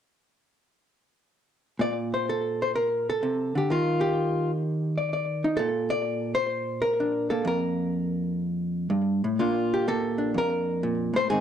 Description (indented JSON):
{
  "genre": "solo jazz",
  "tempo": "127 BPM",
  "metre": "4/4",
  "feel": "swing 68% on 8ths, rubato",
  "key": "Bb major",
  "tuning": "A4 = 441 Hz",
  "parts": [
    { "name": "vintage hollow-body jazz guitar", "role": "solo", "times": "1.8-11.4 s", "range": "F2 to D5", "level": "-24 LUFS", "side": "equal", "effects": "slapback echo" }
  ],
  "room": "digital ambience",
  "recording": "dry, close 1970s-style studio recording",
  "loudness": "-24 LUFS",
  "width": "side -9 dB against mid",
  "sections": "1.8-9.4 A section; 9.4-11.4 B section",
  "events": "none",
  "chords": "1.8 Bbmaj9; 3.7 Ebmaj9; 5.6 Bbmaj9; 7.4 Fsus24; 9.4 Bb6"
}